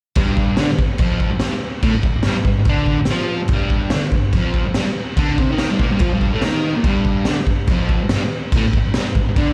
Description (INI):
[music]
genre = garage rock duo or trio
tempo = 143 BPM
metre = 4/4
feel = straight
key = G minor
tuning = A4 = 440 Hz
[part]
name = fuzz guitar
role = riff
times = 0.2-9.5 s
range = F2 to F4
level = -22 LUFS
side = equal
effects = distortion, slapback echo
[part]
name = raw garage drum kit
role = drums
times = 0.2-9.5 s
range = crash cymbal, kick drum, snare drum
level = -20 LUFS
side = equal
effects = none
[sound]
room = light reverb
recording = live gig heard through the venue's PA, club ambience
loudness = -18 LUFS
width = mono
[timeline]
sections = 0.2-9.5 A section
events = none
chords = 0.2 G5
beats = | 0.16 0.58 0.99 1.41 | 1.83 2.25 2.67 3.09 | 3.50 3.92 4.34 4.76 | 5.18 5.60 6.01 6.43 | 6.85 7.27 7.69 8.11 | 8.53 8.95 9.37